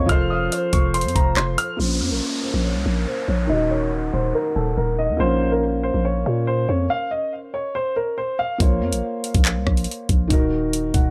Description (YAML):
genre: hip hop, drill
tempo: 141 BPM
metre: 4/4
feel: half-time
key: Bb harmonic minor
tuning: A4 = 440 Hz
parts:
  - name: dark baby grand piano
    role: melody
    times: 0.0-8.6 s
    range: A4 to F6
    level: -27 LUFS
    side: equal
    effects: low-pass filter, tape echo
  - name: gliding portamento lead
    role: second line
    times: 0.0-1.8 s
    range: C5 to F5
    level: -33 LUFS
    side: equal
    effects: chorus, tape echo
  - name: felt-muted upright piano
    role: accompaniment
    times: 0.0-11.1 s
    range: Eb3 to Gb5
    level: -28 LUFS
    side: equal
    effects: low-pass filter
  - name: glass harmonica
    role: sustained chords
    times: 0.0-6.9 s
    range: Db4 to Gb5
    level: -36 LUFS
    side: equal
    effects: low-pass filter
  - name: growling 808-style bass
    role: bass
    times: 0.0-11.1 s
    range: Eb1 to Bb2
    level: -25 LUFS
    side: equal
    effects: none
  - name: drill drum kit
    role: drums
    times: 0.1-1.7, 8.6-11.0 s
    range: handclaps, hi-hat, kick drum, rim click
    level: -22 LUFS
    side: equal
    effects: none
  - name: downlifter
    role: sound effects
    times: 1.8-5.2 s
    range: none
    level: -33 LUFS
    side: equal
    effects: none
room: little or no reverb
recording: dry, gritty hardware recording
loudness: -21 LUFS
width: mono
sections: 0.0-1.8 A section; 1.8-8.6 B section; 8.6-11.1 C section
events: filter sweep 1.8-8.6; stop 6.9-8.6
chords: 0.1 F; 1.8 Bbmadd9; 3.5 Ebm; 5.2 Bbm; 6.9 N.C.; 8.6 Bbmadd9; 10.3 Ebm